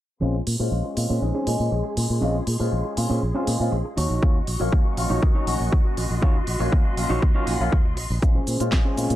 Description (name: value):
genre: filtered disco house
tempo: 120 BPM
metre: 4/4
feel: straight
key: Bb minor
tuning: A4 = 438 Hz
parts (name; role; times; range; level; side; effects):
- warm grand piano; accompaniment; 0.2-9.2 s; Gb3 to F5; -28 LUFS; left 2 dB; phaser, sidechain pumping, low-pass filter
- rich studio string section; sustained chords; 0.2-9.2 s; Gb4 to Db6; -34 LUFS; equal; sidechain pumping, low-pass filter
- electric guitar at the edge of break-up; riff; 0.2-9.2 s; Db4 to Ab5; -30 LUFS; right 1 dB; sidechain pumping, low-pass filter
- fingered electric bass; bass; 0.2-9.2 s; Bb1 to Bb2; -25 LUFS; equal; sidechain pumping, low-pass filter
- house drum kit; drums; 0.5-9.2 s; hi-hat, shaker, snare drum; -32 LUFS; right 1 dB; sidechain pumping on hats, sidechain pumping on perc
- electronic kick drum; drums; 4.2-8.8 s; none; -20 LUFS; equal; none
room: little or no reverb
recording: dark, warm production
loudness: -20 LUFS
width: side -14 dB against mid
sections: 0.2-8.2 A section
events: filter sweep 0.2-8.2; clean electric guitar fill 7.2-8.2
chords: 0.2 Bbm9; 4.0 Ebm7; 8.2 Bbm9